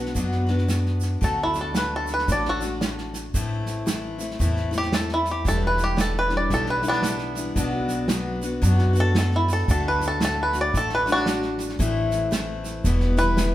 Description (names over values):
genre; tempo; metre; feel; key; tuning
acoustic folk duo or small band; 114 BPM; 4/4; swing 61% on 8ths; E minor; A4 = 440 Hz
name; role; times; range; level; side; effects
bluegrass banjo; melody; 0.0-13.5 s; B3 to D5; -24 LUFS; right 1 dB; none
picked steel-string acoustic guitar; accompaniment; 0.0-13.5 s; E2 to F#4; -27 LUFS; left 2 dB; none
upright bass; bass; 0.0-13.5 s; E1 to F#2; -26 LUFS; equal; none
unplugged drum kit; drums; 0.1-13.5 s; kick drum, snare drum; -28 LUFS; right 1 dB; none
tube shaker; percussion; 0.2-13.5 s; none; -39 LUFS; right 6 dB; none
room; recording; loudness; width
moderate large studio reverb, RT60 1.4 s; band playing live in one room; -21 LUFS; side -14 dB against mid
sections
0.0-13.5 A section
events
five-string banjo solo 0.0-13.5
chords
0.0 Bm; 1.2 D; 3.3 Am; 5.5 Em7; 7.6 Bm; 9.7 D; 11.8 Am; 12.9 Em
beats
0.16 0.69 | 1.22 1.75 2.28 2.81 | 3.34 3.87 4.40 4.93 | 5.46 5.99 6.52 7.04 | 7.57 8.10 8.63 9.16 | 9.69 10.21 10.74 11.27 | 11.80 12.32 12.85 13.38